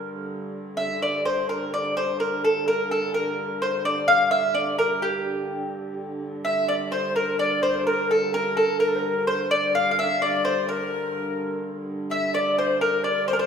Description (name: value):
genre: medieval dance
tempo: 127 BPM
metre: 3/4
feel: straight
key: G dorian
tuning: A4 = 439 Hz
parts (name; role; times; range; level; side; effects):
- mandolin; melody; 0.0-13.5 s; G4 to F5; -22 LUFS; equal; none
- dark hurdy-gurdy; drone; 0.0-13.5 s; G2 to D3; -32 LUFS; right 2 dB; none
- breathy alto recorder; second line; 6.4-13.5 s; A4 to F5; -27 LUFS; left 4 dB; none
room: wet recital hall reverb, RT60 1.6 s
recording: recorded in a church or concert hall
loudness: -22 LUFS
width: side -7 dB against mid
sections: 0.0-6.4 A section; 6.4-13.5 A section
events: none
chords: none